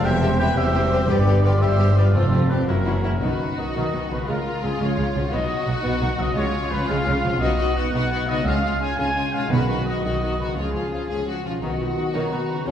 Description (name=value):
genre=cinematic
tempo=114 BPM (dotted quarters)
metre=6/8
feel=straight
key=B lydian from 3.2 s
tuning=A4 = 442 Hz
part: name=clear symphonic violin section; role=melody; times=0.0-12.7 s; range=C4 to G#4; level=-29 LUFS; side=left 3 dB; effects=none
part: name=rich studio violin section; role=second line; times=0.0-12.7 s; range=B3 to E5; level=-31 LUFS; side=left 1 dB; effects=none
part: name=warm oboe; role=second line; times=0.0-3.2, 11.6-12.7 s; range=A4 to G5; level=-28 LUFS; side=right 1 dB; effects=none
part: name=rich studio viola section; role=accompaniment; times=0.0-12.7 s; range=C#3 to C#4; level=-30 LUFS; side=right 1 dB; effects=none
part: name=clear trombone section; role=sustained chords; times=0.0-3.0, 11.6-12.7 s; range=C3 to A3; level=-30 LUFS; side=right 1 dB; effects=none
part: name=mellow French horn section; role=sustained chords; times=0.0-3.0, 11.6-12.7 s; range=B2 to G4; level=-31 LUFS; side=left 3 dB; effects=none
part: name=concert harp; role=arpeggios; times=0.0-12.7 s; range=E2 to C6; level=-31 LUFS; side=left 4 dB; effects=none
part: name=clear trumpet section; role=stabs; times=0.0-11.1 s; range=C4 to G#5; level=-28 LUFS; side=equal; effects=none
part: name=rich symphonic cello section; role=bass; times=0.0-12.7 s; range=E2 to C#3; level=-26 LUFS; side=right 1 dB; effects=none
part: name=rich symphonic double bass section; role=bass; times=0.0-12.7 s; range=E1 to C#2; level=-25 LUFS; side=right 1 dB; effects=none
part: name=timpani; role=percussion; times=9.5-10.0 s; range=B2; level=-28 LUFS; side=right 1 dB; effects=none
part: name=mellow clarinet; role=second line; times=11.6-12.7 s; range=D#4 to F#4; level=-34 LUFS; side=left 1 dB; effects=none
part: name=silver concert flute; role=second line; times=11.6-12.7 s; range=F#5 to A#5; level=-34 LUFS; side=right 1 dB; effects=none
room=wet scoring stage reverb, RT60 1.5 s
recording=heard from further back in the room, lossy compression artefacts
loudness=-19 LUFS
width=side -9 dB against mid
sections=0.0-3.2 A section; 3.2-11.6 B section; 11.6-12.7 C section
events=none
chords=0.0 C/E; 1.1 G; 2.2 F; 2.7 F#7; 3.2 B; 4.3 C#; 5.3 B; 6.4 C#; 7.4 B; 8.5 C#; 9.5 B; 10.6 C#; 11.6 B